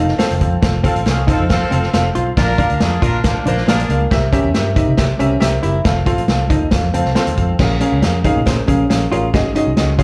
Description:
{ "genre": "uptempo 1960s-style soul", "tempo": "138 BPM", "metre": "4/4", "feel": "straight", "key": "unclear", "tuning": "A4 = 441 Hz", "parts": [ { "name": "bright upright piano", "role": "accompaniment", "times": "0.0-10.0 s", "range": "Ab2 to C6", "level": "-22 LUFS", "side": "equal", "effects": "slapback echo" }, { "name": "hollow-body jazz guitar", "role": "riff", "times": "0.0-10.0 s", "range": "Bb3 to F4", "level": "-24 LUFS", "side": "equal", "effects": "slapback echo" }, { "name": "vintage muted fingered electric bass", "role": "bass", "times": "0.0-10.0 s", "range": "F1 to C3", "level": "-21 LUFS", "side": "equal", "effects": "none" }, { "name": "vintage drum kit", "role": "drums", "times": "0.1-10.0 s", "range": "crash cymbal, hi-hat, kick drum, snare drum", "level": "-20 LUFS", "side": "equal", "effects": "none" }, { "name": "congas", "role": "percussion", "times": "0.2-10.0 s", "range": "none", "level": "barely audible", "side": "none", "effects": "none" }, { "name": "warm horn section", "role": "second line", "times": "0.9-4.0 s", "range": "F3 to Bb4", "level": "-25 LUFS", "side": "equal", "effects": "slapback echo" } ], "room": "light reverb, studio ambience", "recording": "live gig heard through the venue's PA, club reverb", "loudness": "-16 LUFS", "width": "mono", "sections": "0.0-7.6 A section; 7.6-10.0 B section", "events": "upright piano fill 0.0-0.6, 6.3-7.6", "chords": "0.0 F; 2.4 Bb; 4.1 C7; 5.9 F; 7.6 Bbm7; 9.3 Ab7sus4" }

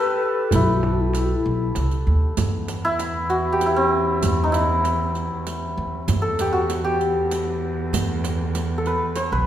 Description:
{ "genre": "Persian modal ensemble", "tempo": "97 BPM", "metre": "3/4", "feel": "straight", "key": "E avaz esfahan", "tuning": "A4 = 440 Hz", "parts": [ { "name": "santur", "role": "melody", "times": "0.0-9.5 s", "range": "C4+50c to C5+50c", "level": "-22 LUFS", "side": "equal", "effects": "none" }, { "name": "breathy mellow low ney", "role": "second line", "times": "0.0-1.7 s", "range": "E4 to B4", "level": "-25 LUFS", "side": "left 5 dB", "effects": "none" }, { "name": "tombak", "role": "percussion", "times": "0.1-9.4 s", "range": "none", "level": "-28 LUFS", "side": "right 2 dB", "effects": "none" }, { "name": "upright bass", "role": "bass", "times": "0.5-9.5 s", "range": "B1 to E2", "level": "-24 LUFS", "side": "right 1 dB", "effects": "none" }, { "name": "riq", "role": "percussion", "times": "0.5-9.3 s", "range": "none", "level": "-32 LUFS", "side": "right 5 dB", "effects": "none" }, { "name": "dark cello", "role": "drone", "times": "2.4-9.5 s", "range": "E2", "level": "-28 LUFS", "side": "right 2 dB", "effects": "none" } ], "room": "wet recital hall reverb, RT60 1.5 s", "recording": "minimal, uncompressed stereo recording", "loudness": "-19 LUFS", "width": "side -11 dB against mid", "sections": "0.0-2.4 A section; 2.4-9.5 B section", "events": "none", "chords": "none" }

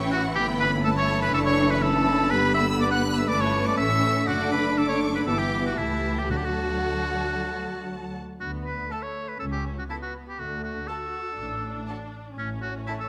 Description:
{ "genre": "quick classical-period movement for symphony orchestra", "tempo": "121 BPM", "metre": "4/4", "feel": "rubato", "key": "D major", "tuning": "A4 = 440 Hz", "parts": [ { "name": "rich studio violin section", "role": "melody", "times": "0.0-13.0 s", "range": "A5 to D6", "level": "-39 LUFS", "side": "equal", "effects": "none" }, { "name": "rich studio violin section", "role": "second line", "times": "0.0-13.0 s", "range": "A3 to F#6", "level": "-36 LUFS", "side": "equal", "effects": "none" }, { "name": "rich studio viola section", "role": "accompaniment", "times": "0.0-13.1 s", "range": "D3 to B4", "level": "-36 LUFS", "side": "equal", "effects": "none" }, { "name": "mellow French horn section", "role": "sustained chords", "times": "0.0-8.2 s", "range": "G3 to G4", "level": "-33 LUFS", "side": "equal", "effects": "none" }, { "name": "dark studio cello section", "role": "bass", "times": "0.0-12.8 s", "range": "C#2 to D4", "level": "-32 LUFS", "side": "equal", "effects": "none" }, { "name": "warm studio double bass section", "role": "bass", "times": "0.0-12.8 s", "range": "F#1 to D2", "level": "-34 LUFS", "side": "equal", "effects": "none" }, { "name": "bright oboe", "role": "second line", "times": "0.1-13.1 s", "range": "C#4 to F#5", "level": "-30 LUFS", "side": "equal", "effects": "none" }, { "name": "timpani", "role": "percussion", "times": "6.3-7.1 s", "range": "D3", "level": "-38 LUFS", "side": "equal", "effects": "none" } ], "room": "moderate scoring stage reverb, RT60 1.4 s", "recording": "none", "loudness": "-25 LUFS", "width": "mono", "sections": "0.0-8.4 A section; 8.4-13.1 A section", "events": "none", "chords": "0.4 A7/G; 1.3 D/F#; 2.3 G; 3.3 A7/G; 4.3 D/F#; 5.3 Em7/G; 5.8 A7/C#; 6.3 D; 8.4 D5; 9.4 N.C.; 10.4 D; 12.4 A" }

